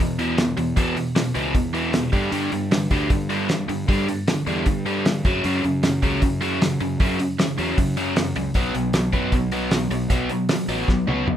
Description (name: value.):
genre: indie rock.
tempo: 154 BPM.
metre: 4/4.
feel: straight.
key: E dorian.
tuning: A4 = 440 Hz.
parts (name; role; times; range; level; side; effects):
biting overdriven guitar; riff; 0.0-11.4 s; E2 to B3; -22 LUFS; equal; none.
fuzz fingered electric bass; bass; 0.0-11.4 s; A1 to G2; -28 LUFS; equal; overdrive.
cloth-damped thuddy drum kit; drums; 0.2-11.4 s; hi-hat, kick drum, snare drum, toms; -22 LUFS; equal; none.
room: wet small room reverb, RT60 0.5 s.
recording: rough home demo mix.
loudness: -19 LUFS.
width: side -10 dB against mid.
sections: 0.0-11.4 A section.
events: drum fill 10.9-11.4.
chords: 0.0 E5; 2.1 G5; 5.2 F#5; 8.6 B5.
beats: 0.38 | 0.77 1.16 1.55 1.94 | 2.33 2.72 3.11 3.50 | 3.89 4.28 4.67 5.05 | 5.44 5.83 6.22 6.61 | 7.00 7.39 7.78 8.17 | 8.56 8.95 9.34 9.72 | 10.11 10.50 10.89 11.28.